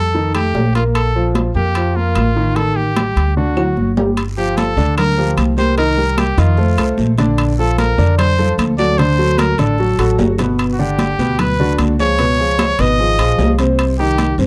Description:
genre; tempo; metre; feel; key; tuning
Afro-Cuban jazz; 150 BPM; 4/4; straight; Bb major; A4 = 440 Hz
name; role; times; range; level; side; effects
bright trumpet; melody; 0.0-14.4 s; F4 to D#5; -21 LUFS; equal; none
warm concert grand piano; accompaniment; 0.0-14.5 s; B2 to F#5; -21 LUFS; equal; none
upright bass; bass; 0.0-14.5 s; G1 to G2; -20 LUFS; equal; none
congas; percussion; 0.1-14.5 s; none; -24 LUFS; equal; none
claves; percussion; 0.3-14.0 s; none; -33 LUFS; equal; none
timbales; percussion; 0.3-14.4 s; none; -25 LUFS; equal; none
guiro; percussion; 4.2-14.5 s; none; -38 LUFS; equal; none
room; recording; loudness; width
small room ambience; dry, close 1970s-style studio recording; -15 LUFS; mono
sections
0.0-4.2 A section; 4.2-14.5 B section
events
drum fill 3.6-4.2, 10.2-10.6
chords
0.1 F9; 1.0 Bb5; 2.6 Ebmaj7#11/A; 3.4 D; 4.2 Gm11; 5.8 Cm7; 6.6 F6; 7.4 Bbmaj7; 9.0 D7; 10.6 Gmaj7; 12.2 C#9; 13.8 Cm

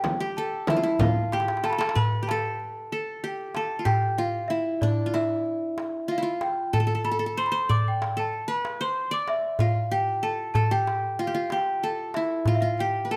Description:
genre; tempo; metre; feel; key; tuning
Turkish makam ensemble; 188 BPM (eighths); 9/8; straight; A makam ussak; A4 = 440 Hz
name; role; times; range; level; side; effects
large celesta; melody; 0.0-13.2 s; D5 to D6; -30 LUFS; equal; none
qanun; second line; 0.0-13.2 s; D4 to D5; -32 LUFS; equal; none
darbuka; percussion; 0.0-12.9 s; none; -30 LUFS; equal; none
frame drum; percussion; 0.0-1.1 s; none; -31 LUFS; equal; none
room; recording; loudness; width
moderate recital hall reverb, RT60 1.5 s; close, detailed microphones; -26 LUFS; mono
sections
0.0-1.9 A section; 1.9-13.2 B section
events
drum fill 1.3-1.9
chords
none

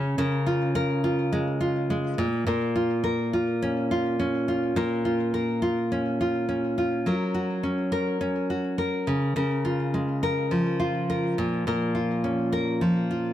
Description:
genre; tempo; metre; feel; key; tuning
pop; 104 BPM; 4/4; swing 55% on 16ths; Bb minor; A4 = 440 Hz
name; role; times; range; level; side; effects
nylon-string guitar; solo; 0.0-13.3 s; Bb2 to Bb4; -23 LUFS; equal; ping-pong delay
room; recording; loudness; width
light reverb; none; -23 LUFS; side -12 dB against mid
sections
0.0-7.1 A section; 7.1-13.3 B section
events
none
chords
0.0 Db6; 2.2 Bbm; 7.1 Gb; 9.1 Db6; 11.4 Bbm

